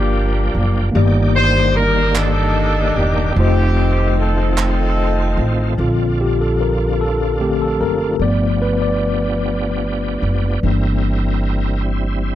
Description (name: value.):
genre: slow gospel.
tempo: 50 BPM (dotted quarters).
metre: 6/8.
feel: straight.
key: Bb major.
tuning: A4 = 439 Hz.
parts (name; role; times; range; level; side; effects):
warm horn section; melody; 0.0-5.8 s; Bb3 to C5; -20 LUFS; left 1 dB; tape echo.
tine electric piano; accompaniment; 0.0-12.3 s; G2 to D5; -20 LUFS; left 3 dB; medium stereo tremolo.
bright tonewheel organ; sustained chords; 0.0-12.3 s; Eb3 to D5; -24 LUFS; right 2 dB; slow rotary speaker, overdrive, chorus vibrato.
upright bass; bass; 0.0-12.3 s; E1 to Bb1; -18 LUFS; right 1 dB; none.
group handclap; percussion; 2.2-5.0 s; none; -23 LUFS; right 7 dB; none.
room: little or no reverb.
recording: dry, close 1970s-style studio recording.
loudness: -14 LUFS.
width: side -12 dB against mid.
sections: 0.0-5.8 A section; 5.8-12.3 B section.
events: tine electric piano solo 5.8-12.3.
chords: 0.0 Gm7; 0.9 Ebmaj7/G; 3.4 F7; 5.8 Bbmaj7; 8.2 G7; 10.6 C7/G.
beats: | 0.95 2.15 | 3.36 4.57 | 5.79 7.00 | 8.21 9.42 | 10.63 11.85.